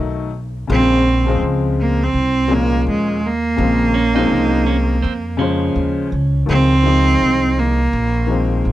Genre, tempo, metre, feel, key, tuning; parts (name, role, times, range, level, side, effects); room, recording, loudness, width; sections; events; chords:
hip hop, jazz-hop; 83 BPM; 4/4; swing 61% on 16ths; Bb minor; A4 = 440 Hz
warm upright piano; accompaniment; 0.0-8.7 s; Bb2 to C5; -21 LUFS; left 6 dB
upright bass; bass; 0.0-8.7 s; Ab1 to F2; -18 LUFS; equal
clear cello; melody; 0.7-8.7 s; Ab3 to C4; -17 LUFS; right 3 dB
clean electric guitar; second line; 3.9-6.4 s; C4 to Eb4; -23 LUFS; right 8 dB
small room ambience; dry, close 1970s-style studio recording; -14 LUFS; side -14 dB against mid
0.0-6.5 A section; 6.5-8.7 B section
0.0 F7b9 (rootless); 0.7 Bbm9; 6.5 Dbmaj9